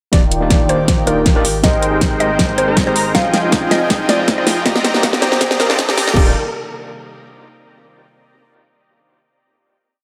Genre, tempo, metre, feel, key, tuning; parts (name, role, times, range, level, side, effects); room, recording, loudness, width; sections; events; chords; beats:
future bass; 159 BPM; 4/4; half-time; Eb major; A4 = 438 Hz
mallet-like synth pluck; melody; 0.1-6.3 s; G4 to F5; -23 LUFS; equal; chorus, phaser, sidechain pumping, dub echo
overdriven tine electric piano; accompaniment; 0.1-6.3 s; Ab3 to D5; -25 LUFS; equal; medium tremolo, sidechain pumping
airy breathy pad; sustained chords; 0.1-6.3 s; C3 to D5; -32 LUFS; equal
supersaw chords; riff; 0.1-6.3 s; Eb3 to Bb5; -21 LUFS; equal; sidechain pumping, low-pass filter
saturated sub bass; bass; 0.1-6.3 s; Eb1 to C2; -30 LUFS; equal; sidechain pumping
electronic kick drum; drums; 0.1-6.2 s; -19 LUFS; equal
pop drum kit; drums; 0.1-6.2 s; crash cymbal, hi-hat, snare drum; -20 LUFS; equal
riser; sound effects; 2.1-6.2 s; -29 LUFS; equal
moderate digital room reverb, RT60 1.2 s, digital ambience; high-pass filter; -15 LUFS; mono
0.1-6.2 build; 6.2-7.7 final chord
build-up 0.1-6.2; drum fill 0.1-6.2; filter sweep on supersaw synth 0.1-6.2; filter sweep on synth pluck 0.1-6.2; filter sweep 0.1-6.2
0.1 Ebmaj7; 1.4 Abmaj7; 3.1 Fm7; 4.7 Cm7; 6.2 Ebmaj7
| 0.13 0.51 0.88 1.26 | 1.64 2.02 2.39 2.77 | 3.15 3.52 3.90 4.28 | 4.66 5.03 5.41 5.79 | 6.17